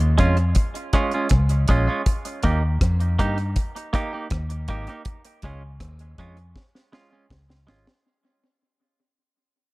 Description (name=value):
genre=roots reggae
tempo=80 BPM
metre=4/4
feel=straight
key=unclear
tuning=A4 = 439 Hz
part: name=vintage muted fingered electric bass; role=bass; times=0.0-7.9 s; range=Ab1 to G2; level=-21 LUFS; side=equal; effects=none
part: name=deep reggae drum kit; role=drums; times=0.0-8.0 s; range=hi-hat, kick drum, rim click, snare drum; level=-23 LUFS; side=equal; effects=none
part: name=semi-hollow electric guitar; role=accompaniment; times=0.2-7.9 s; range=Ab3 to G4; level=-26 LUFS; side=right 3 dB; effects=analog delay
room=studio ambience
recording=echo-heavy mix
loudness=-20 LUFS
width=side -21 dB against mid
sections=0.0-8.1 A section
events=fade-out 0.0-8.1; drum fill 6.6-8.1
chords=0.0 Db; 2.1 Eb; 5.1 Db